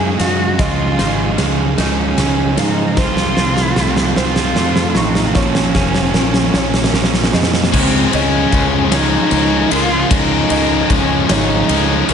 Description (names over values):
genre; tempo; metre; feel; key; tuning
post-rock; 50 BPM (dotted quarters); 6/8; straight; Db major; A4 = 438 Hz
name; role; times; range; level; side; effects
dark cello; melody; 0.0-12.1 s; C4 to Ab4; -20 LUFS; left 2 dB; slapback echo
soft additive organ-like pad; sustained chords; 0.0-7.7 s; C4 to Db6; -30 LUFS; equal; none
felt-muted upright piano; arpeggios; 0.0-12.1 s; Bb4 to Db6; -29 LUFS; right 3 dB; slapback echo
twelve-string electric guitar; arpeggios; 0.0-7.7 s; Bb2 to Eb4; -27 LUFS; left 4 dB; wide subtle chorus, slapback echo
sludgy distorted guitar; riff; 0.0-12.1 s; Bb2 to Db4; -19 LUFS; right 9 dB; overdrive, slapback echo
modern bright fingered electric bass; bass; 0.0-12.1 s; F1 to Ab2; -20 LUFS; left 1 dB; none
huge arena drum kit; drums; 0.2-12.1 s; crash cymbal, kick drum, ride cymbal, snare drum; -17 LUFS; equal; none
tight distorted guitar; riff; 7.7-12.1 s; Db3 to Db4; -18 LUFS; left 11 dB; distortion
room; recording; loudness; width
moderate concert hall reverb, RT60 2.5 s; big arena sound, nothing above 10.6 kHz, faint mains hum; -12 LUFS; side -7 dB against mid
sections
0.0-7.7 A section; 7.7-12.1 B section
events
build-up 0.0-7.7; drum fill 0.0-7.7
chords
0.0 Dbadd9; 3.0 F/C; 5.4 Bbm; 7.7 Dbadd9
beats
| 0.59 1.78 | 2.98 4.17 | 5.36 6.54 | 7.74 8.92 | 10.11 11.30